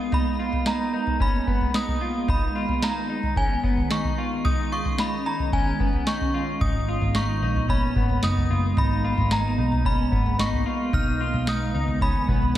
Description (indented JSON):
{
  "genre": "dream pop",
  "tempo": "111 BPM",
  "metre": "4/4",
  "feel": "straight",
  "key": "G# dorian",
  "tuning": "A4 = 440 Hz",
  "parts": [
    { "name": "synth chime", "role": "melody", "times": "0.0-12.6 s", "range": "G#5 to E#6", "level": "-29 LUFS", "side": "equal", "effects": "ensemble chorus, diffuse ambient delay" },
    { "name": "ethereal airy pad", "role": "sustained chords", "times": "0.0-12.6 s", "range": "D#3 to C#4", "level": "-28 LUFS", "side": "right 1 dB", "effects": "ensemble chorus, built-in reverb" },
    { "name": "clean electric guitar", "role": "arpeggios", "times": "0.0-12.6 s", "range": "B3 to E#4", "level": "-31 LUFS", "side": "left 2 dB", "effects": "lush chorus, diffuse ambient delay" },
    { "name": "booming analog drum machine", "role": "drums", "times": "0.1-12.6 s", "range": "kick drum, snare drum, toms", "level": "-25 LUFS", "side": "equal", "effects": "none" },
    { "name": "vintage muted picked electric bass", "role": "bass", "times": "6.6-12.6 s", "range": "F#1 to C#2", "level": "-25 LUFS", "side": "equal", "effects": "none" }
  ],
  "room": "wet lush hall reverb, RT60 1.7 s, digital ambience",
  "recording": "dreamy mix soaked in reverb",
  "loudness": "-21 LUFS",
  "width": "side -12 dB against mid",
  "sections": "0.0-12.6 A section",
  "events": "none",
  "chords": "0.0 G#madd9; 2.3 B6; 6.6 G#madd9; 10.9 B6",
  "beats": "| 0.12 0.66 1.20 1.74 | 2.28 2.82 3.37 3.90 | 4.45 4.99 5.53 6.07 | 6.61 7.15 7.69 8.23 | 8.77 9.31 9.85 10.39 | 10.93 11.47 12.01 12.55"
}